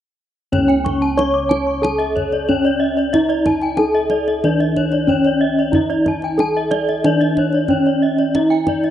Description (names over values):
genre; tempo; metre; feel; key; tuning
Balinese gamelan; 92 BPM; 4/4; straight; unclear; A4 = 438 Hz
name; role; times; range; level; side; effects
gamelan-type bronze metallophone; melody; 0.5-8.9 s; C#4 to C#5; -17 LUFS; equal; none
gamelan-type bronze metallophone; arpeggios; 0.5-8.9 s; C#5 to D6; -22 LUFS; left 5 dB; none
gamelan-type bossed gongs; bass; 0.5-8.9 s; C#2 to E4-50c; -22 LUFS; equal; none
kendang; percussion; 0.5-8.9 s; none; -25 LUFS; right 1 dB; none
gamelan-type bronze metallophone; arpeggios; 0.7-8.7 s; D5 to A5-40c; -27 LUFS; right 6 dB; none
room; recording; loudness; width
moderate lush hall reverb, RT60 2.5 s; rough home demo mix, nothing above 10.5 kHz; -14 LUFS; side -11 dB against mid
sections
0.5-8.9 A section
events
none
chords
none